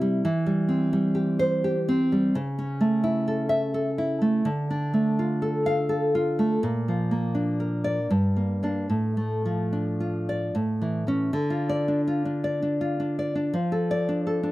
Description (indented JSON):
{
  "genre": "romantic piece for solo classical guitar",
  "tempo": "73-87 BPM",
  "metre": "3/4",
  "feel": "rubato",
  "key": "D minor",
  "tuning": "A4 = 438 Hz",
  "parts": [
    { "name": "nylon-string guitar", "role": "solo", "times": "0.0-14.5 s", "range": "G2 to F5", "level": "-23 LUFS", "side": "equal", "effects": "none" }
  ],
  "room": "studio ambience",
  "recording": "dry, close 1970s-style studio recording",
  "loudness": "-23 LUFS",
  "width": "side -17 dB against mid",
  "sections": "0.0-11.3 A section; 11.3-14.5 B section",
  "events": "none",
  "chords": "0.3 C/E; 2.3 A/C#; 4.5 Dm; 6.6 Bb; 8.1 Gm; 8.9 Dm/A; 10.5 A; 11.3 Dm; 13.5 Dm/F"
}